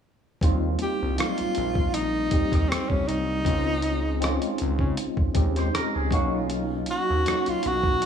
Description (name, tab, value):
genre	R&B, neo-soul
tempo	79 BPM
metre	4/4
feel	swing 54% on 16ths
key	Eb mixolydian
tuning	A4 = 440 Hz
part	tine electric piano	accompaniment	0.4-8.1 s	Gb3 to E#5	-28 LUFS	left 1 dB	medium stereo tremolo
part	fat analog bass	bass	0.4-8.1 s	Bb1 to Db3	-28 LUFS	equal	none
part	dusty soul sampler-style drum kit	drums	0.4-8.1 s	hi-hat, kick drum, rim click	-26 LUFS	equal	none
part	breathy tenor saxophone	melody	0.8-8.1 s	C4 to G4	-26 LUFS	equal	slapback echo
part	electric guitar through a small old amp	second line	5.6-7.4 s	E#4 to C5	-32 LUFS	right 3 dB	harmonic tremolo
room	little or no reverb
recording	small room ambience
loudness	-22 LUFS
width	side -8 dB against mid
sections	0.4-8.1 A section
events	none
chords	0.4 Eb69; 3.5 Dbmaj9; 6.1 Bmaj9#11